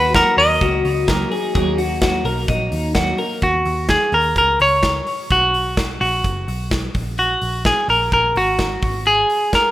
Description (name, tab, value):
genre	jangly indie pop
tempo	128 BPM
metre	4/4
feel	straight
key	Eb minor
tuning	A4 = 441 Hz
part	semi-hollow electric guitar	melody	0.0-9.7 s	Gb4 to Eb5	-16 LUFS	equal	none
part	glockenspiel with hard plastic mallets	second line	0.0-2.9 s	Bb6 to Eb7	-28 LUFS	right 2 dB	none
part	picked steel-string acoustic guitar	accompaniment	0.0-3.4 s	Eb3 to Eb4	-25 LUFS	right 4 dB	none
part	twelve-string electric guitar	arpeggios	0.0-3.4 s	Eb4 to Bb4	-22 LUFS	left 4 dB	harmonic tremolo
part	vintage muted picked electric bass	bass	0.0-9.2 s	F#1 to Eb2	-24 LUFS	equal	none
part	big rock drum kit	drums	0.1-9.6 s	hi-hat, kick drum, snare drum	-23 LUFS	equal	none
room	moderate plate reverb, RT60 1.6 s, small room ambience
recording	rough home demo mix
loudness	-15 LUFS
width	side -15 dB against mid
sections	0.0-3.4 A section; 3.4-9.7 B section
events	none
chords	0.0 Ebm; 3.4 Ebm7; 5.3 B5; 6.9 Gb/Bb; 8.8 Ab7(no3)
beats	0.15 0.61 1.08 | 1.55 2.02 2.49 2.96 | 3.43 3.90 4.37 4.83 | 5.30 5.77 6.24 6.71 | 7.18 7.65 8.12 8.59 | 9.06 9.53